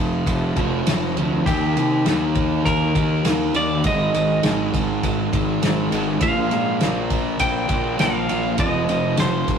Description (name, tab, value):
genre	rock, shoegaze and dream pop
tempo	101 BPM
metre	4/4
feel	straight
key	unclear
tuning	A4 = 440 Hz
part	fuzz guitar	riff	0.0-9.6 s	F2 to Eb4	-21 LUFS	equal	distortion
part	fuzz fingered electric bass	bass	0.0-9.6 s	F1 to C3	-28 LUFS	equal	overdrive
part	loose indie drum kit	drums	0.3-9.6 s	kick drum, ride cymbal, snare drum	-24 LUFS	equal	none
part	twangy electric guitar	melody	1.5-9.6 s	G4 to G5	-24 LUFS	right 1 dB	digital delay
room	wet studio reverb, RT60 0.6 s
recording	rough rehearsal-room recording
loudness	-18 LUFS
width	side -7 dB against mid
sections	0.0-9.6 A section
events	none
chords	0.0 F5; 1.5 Eb; 3.8 Ab5; 6.2 Bb5; 8.6 F5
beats	0.27 0.87 | 1.46 2.06 2.65 3.25 | 3.85 4.44 5.03 5.63 | 6.22 6.82 7.41 8.00 | 8.60 9.19